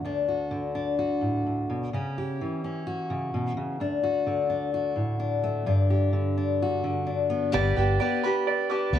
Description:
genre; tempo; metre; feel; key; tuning
folk; 128 BPM; 4/4; straight; unclear; A4 = 435 Hz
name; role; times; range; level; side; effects
fingerpicked steel-string acoustic guitar; accompaniment; 0.0-7.5 s; D2 to G4; -25 LUFS; left 2 dB; analog delay
picked acoustic archtop guitar; accompaniment; 7.5-9.0 s; G3 to B4; -26 LUFS; left 2 dB; analog delay
bright upright piano; arpeggios; 7.5-9.0 s; D5 to D6; -27 LUFS; right 7 dB; analog delay
fingered electric bass; bass; 7.5-9.0 s; G1 to D2; -24 LUFS; equal; none
room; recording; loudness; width
light reverb, small room ambience; echo-heavy mix; -24 LUFS; side -10 dB against mid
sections
0.0-7.5 A section; 7.5-9.0 B section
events
none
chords
0.1 D; 1.9 Em69; 3.8 D; 5.7 G5; 7.5 G

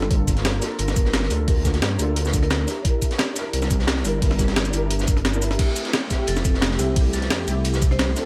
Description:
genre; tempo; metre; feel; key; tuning
liquid drum and bass; 175 BPM; 4/4; straight; unclear; A4 = 441 Hz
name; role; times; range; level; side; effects
felt-muted upright piano; accompaniment; 0.0-8.3 s; A3 to Bb4; -30 LUFS; equal; ensemble chorus, delay
dark detuned saw bass; bass; 0.0-8.2 s; F1 to G2; -26 LUFS; equal; tube saturation
breakbeat sampler-style drum kit; drums; 0.0-8.2 s; crash cymbal, hi-hat, ride cymbal, shaker, snare drum; -28 LUFS; equal; none
crunchy breakbeat drum kit; drums; 0.1-8.3 s; hi-hat, snare drum; -34 LUFS; equal; high-pass filter on hats, high-pass filter on snare, high-pass filter on room
electronic kick drum; drums; 0.1-7.9 s; none; -23 LUFS; equal; none
vibraphone with medium hard mallets; melody; 0.8-2.7, 6.3-8.2 s; A4 to C5; -36 LUFS; equal; delay
room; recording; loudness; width
light reverb, small room ambience; none; -22 LUFS; mono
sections
0.0-5.6 A section; 5.6-8.3 A section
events
drop 0.0-5.6, 5.6-8.3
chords
0.1 Gm9; 2.7 C9; 5.6 Fmaj9

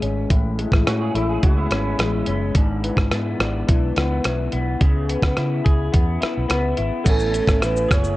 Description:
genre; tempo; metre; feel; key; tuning
indie pop, bedroom pop; 107 BPM; 4/4; straight; A major; A4 = 444 Hz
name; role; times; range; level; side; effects
electric guitar through a small old amp; accompaniment; 0.0-8.2 s; G#2 to G#4; -24 LUFS; left 3 dB; analog chorus, vibrato effect, low-pass filter
vintage muted fingered electric bass; bass; 0.0-8.2 s; F#1 to C#3; -24 LUFS; equal; none
dusty soul sampler-style drum kit; drums; 0.0-8.2 s; crash cymbal, hi-hat, kick drum, rim click, shaker; -20 LUFS; equal; vintage 12-bit sampler grit
electric guitar through a small old amp; second line; 0.9-2.4 s; B3 to A4; -30 LUFS; right 3 dB; ensemble chorus, tape echo
clear upright piano; accompaniment; 7.0-8.2 s; B3 to G#5; -30 LUFS; right 4 dB; cassette tape
soft octave-layered synth lead; melody; 7.1-8.2 s; A4 to C#5; -22 LUFS; right 4 dB; lush chorus
room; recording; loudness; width
light reverb; worn, warbling old tape, cassette tape, warbly pitch drift; -18 LUFS; side -17 dB against mid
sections
0.0-7.1 A section; 7.1-8.2 B section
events
filter sweep on clean electric guitar 0.0-7.1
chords
0.0 Amaj7; 2.6 E7/G#; 4.8 C#m7; 7.1 Amaj7

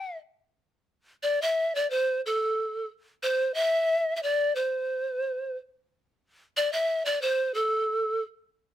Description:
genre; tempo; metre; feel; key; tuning
andean folk; 90 BPM; 2/4; straight; A minor pentatonic; A4 = 440 Hz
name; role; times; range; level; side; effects
breathy polished pan flute; solo; 0.0-8.2 s; A4 to A5; -25 LUFS; equal; none
room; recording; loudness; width
light reverb; close, detailed microphones; -25 LUFS; side -12 dB against mid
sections
0.6-8.7 A section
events
none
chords
none

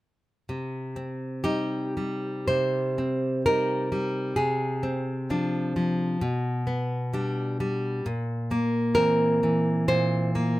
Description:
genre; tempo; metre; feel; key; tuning
romantic piece for solo classical guitar; 65 BPM; 4/4; rubato; C minor; A4 = 440 Hz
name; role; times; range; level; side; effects
nylon-string guitar; solo; 0.5-10.6 s; Bb2 to C5; -24 LUFS; equal; none
room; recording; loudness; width
light reverb; close, detailed microphones; -24 LUFS; side -17 dB against mid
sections
0.5-10.6 A section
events
none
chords
0.5 Cm; 4.4 Dm7b5/C; 6.2 G/B; 8.0 C7/Bb

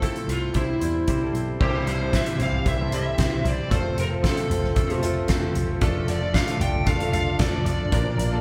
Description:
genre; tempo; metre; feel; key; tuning
piano-driven pop; 114 BPM; 4/4; straight; unclear; A4 = 441 Hz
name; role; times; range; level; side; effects
lead guitar through a small cranked amp; melody; 0.0-8.4 s; E4 to G5; -31 LUFS; equal; overdrive
clear grand piano; accompaniment; 0.0-8.4 s; G2 to D5; -33 LUFS; equal; none
direct-recorded clean electric guitar; riff; 0.0-8.4 s; Bb2 to C5; -34 LUFS; equal; none
vintage muted picked electric bass; bass; 0.0-8.4 s; F1 to E2; -30 LUFS; equal; none
soft-mallet drum kit; drums; 0.0-8.3 s; crash cymbal, hi-hat, kick drum, snare drum, toms; -28 LUFS; equal; none
warm studio string section; sustained chords; 1.6-8.4 s; E3 to D4; -38 LUFS; equal; none
room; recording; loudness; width
moderate large studio reverb, RT60 1.1 s; band playing live in one room; -23 LUFS; mono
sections
0.0-1.6 A section; 1.6-8.4 B section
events
none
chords
0.0 Fmaj7/C; 0.6 C; 3.7 F; 5.8 Dm/F

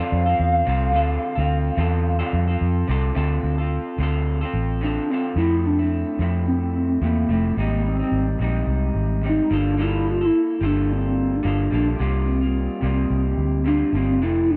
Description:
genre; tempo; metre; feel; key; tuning
indie pop, bedroom pop; 108 BPM; 4/4; swing 55% on 16ths; unclear; A4 = 441 Hz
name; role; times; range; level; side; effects
hollow clarinet-like synth lead; melody; 0.0-14.6 s; A3 to F5; -25 LUFS; equal; phaser, ensemble chorus, tape echo
electric guitar through a small old amp; accompaniment; 0.0-14.6 s; F2 to A4; -29 LUFS; equal; subtle chorus, warbly pitch drift
vintage muted fingered electric bass; bass; 0.1-14.6 s; F1 to F2; -24 LUFS; equal; none
room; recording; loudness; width
little or no reverb; dry, close 1970s-style studio recording; -22 LUFS; mono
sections
0.0-3.1 A section; 3.1-5.4 B section; 5.4-14.6 C section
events
none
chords
0.0 Dm7; 5.4 Fmaj7; 7.6 Abmaj7; 9.5 Gm9; 12.0 C7sus4

